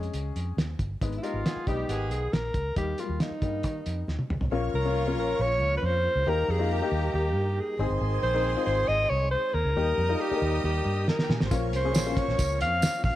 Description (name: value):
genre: uptempo 1960s-style soul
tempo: 137 BPM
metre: 4/4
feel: straight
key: Eb mixolydian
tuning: A4 = 439 Hz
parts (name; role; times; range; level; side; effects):
- warm baby grand piano; accompaniment; 0.0-12.7 s; Gb3 to Bb4; -33 LUFS; left 7 dB; none
- vintage muted fingered electric bass; bass; 0.0-13.1 s; G1 to Eb3; -29 LUFS; equal; none
- cloth-damped thuddy drum kit; drums; 0.0-4.5, 11.1-13.1 s; hi-hat, kick drum, snare drum, toms; -28 LUFS; equal; none
- breathy alto saxophone; melody; 1.2-13.2 s; Eb4 to F5; -28 LUFS; equal; none
- warm horn section; second line; 1.2-13.0 s; Eb3 to C5; -37 LUFS; right 1 dB; none
- bright studio violin section; second line; 4.5-13.0 s; Db4 to Eb6; -37 LUFS; right 1 dB; none
- tonewheel organ; sustained chords; 4.5-13.2 s; F3 to Ab4; -39 LUFS; right 1 dB; chorus vibrato, slow rotary speaker
- tambourine; percussion; 11.5-12.9 s; none; -38 LUFS; right 6 dB; none
room: light reverb, studio reverb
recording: dark, warm production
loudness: -24 LUFS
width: side -14 dB against mid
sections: 0.0-4.5 A section; 4.5-13.2 B section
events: drum fill 4.1-4.5, 11.1-11.5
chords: 0.0 Db; 1.0 Abm; 2.8 Eb; 4.5 Bbm; 6.3 Eb; 7.8 Ab; 9.8 Eb; 11.5 Bbm